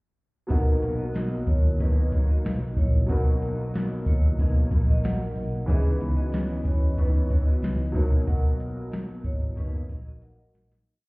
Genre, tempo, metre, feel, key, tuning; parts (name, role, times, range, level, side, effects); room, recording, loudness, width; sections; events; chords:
indie pop, bedroom pop; 93 BPM; 4/4; straight; B major; A4 = 440 Hz
vibraphone with medium mallets; second line; 0.5-10.7 s; D#4 to F#5; -37 LUFS; right 1 dB; lush chorus, tape echo
electric guitar through a small old amp; accompaniment; 0.5-11.1 s; B2 to D#4; -33 LUFS; left 1 dB; ensemble chorus, warbly pitch drift
warm upright piano; accompaniment; 0.5-10.9 s; E3 to B4; -35 LUFS; equal; cassette tape
vintage muted fingered electric bass; bass; 0.5-10.8 s; F#1 to E2; -25 LUFS; equal
soft vintage rhythm box; drums; 0.5-10.9 s; hi-hat, kick drum, snare drum; -25 LUFS; equal; overdrive
light reverb, digital ambience; heard muffled through a wall, club reverb, EQ; -22 LUFS; side -26 dB against mid
0.5-10.9 A section
fade-out 8.3-10.9; drum fill 10.2-10.9
0.5 Bmaj7; 5.7 C#m9; 8.0 Bmaj7